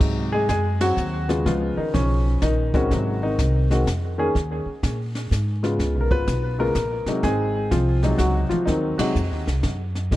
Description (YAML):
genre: jazz piano trio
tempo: 125 BPM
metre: 3/4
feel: swing 66% on 8ths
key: Ab mixolydian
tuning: A4 = 440 Hz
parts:
  - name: warm baby grand piano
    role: melody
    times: 0.0-10.2 s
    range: C3 to Cb5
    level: -23 LUFS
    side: left 1 dB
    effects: tape echo
  - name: upright bass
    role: bass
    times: 0.0-10.2 s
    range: Ab1 to Bb2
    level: -23 LUFS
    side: equal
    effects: none
  - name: jazz brush drum kit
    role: drums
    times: 0.0-10.2 s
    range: brushed snare drum, crash cymbal, hi-hat, kick drum, ride cymbal, snare drum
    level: -27 LUFS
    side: equal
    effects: none
room: light reverb, studio reverb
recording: dark, warm production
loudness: -20 LUFS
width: side -15 dB against mid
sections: 0.0-10.2 A section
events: band accent 0.7, 8.9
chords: 0.0 Ab7; 1.5 Db7; 2.9 Ab7; 4.3 Eb5; 5.3 Abmadd11; 5.8 Db7; 7.2 Ab7